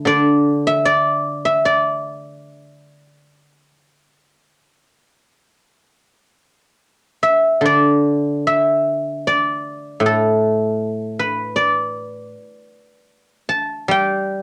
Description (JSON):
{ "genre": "chinese traditional, Chinese solo plucked strings", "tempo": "65-80 BPM", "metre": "4/4", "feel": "rubato", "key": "D zhi mode", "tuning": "A4 = 436 Hz", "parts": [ { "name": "guzheng", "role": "solo", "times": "0.0-14.4 s", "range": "A2 to A5", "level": "-18 LUFS", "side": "equal", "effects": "cassette tape" } ], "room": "moderate studio reverb, RT60 0.6 s", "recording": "home recording on cassette", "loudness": "-18 LUFS", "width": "mono", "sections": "0.0-6.8 A section; 6.8-14.4 B section", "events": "none", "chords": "none" }